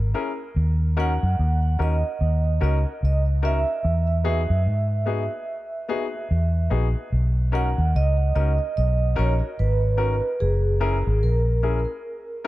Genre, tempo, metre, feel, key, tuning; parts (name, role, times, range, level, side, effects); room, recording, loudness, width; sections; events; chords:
lovers rock reggae; 73 BPM; 4/4; swing 59% on 16ths; B major; A4 = 440 Hz
vintage muted fingered electric bass; bass; 0.0-11.8 s; F#1 to G#2; -20 LUFS; equal
warm baby grand piano; accompaniment; 0.1-12.5 s; B3 to A#4; -30 LUFS; left 5 dB
vibraphone with soft mallets; melody; 1.0-12.5 s; G#4 to F#5; -28 LUFS; right 3 dB; tape echo
light reverb, small room ambience; dark, warm production; -20 LUFS; side -17 dB against mid
0.0-12.5 A section
0.0 F#9 (rootless); 0.6 D#m7; 3.8 Emaj7; 7.1 Bmaj7; 10.4 F#9